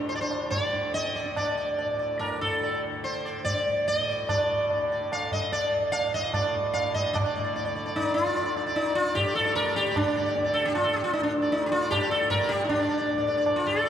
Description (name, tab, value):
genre	indian classical, Hindustani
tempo	141-157 BPM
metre	7/4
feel	straight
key	D raga bhairavi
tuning	A4 = 442 Hz
part	tanpura	drone	0.0-13.9 s	D2 to D3	-36 LUFS	equal	none
part	sitar	melody	0.1-13.9 s	D4 to F5	-25 LUFS	equal	none
part	tabla	percussion	0.1-13.9 s	none	-31 LUFS	right 2 dB	none
room	wet cathedral reverb, RT60 4.4 s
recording	recorded in a church or concert hall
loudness	-24 LUFS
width	side -9 dB against mid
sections	0.0-7.2 A section; 7.2-13.9 B section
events	speeding up 0.0-13.9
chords	none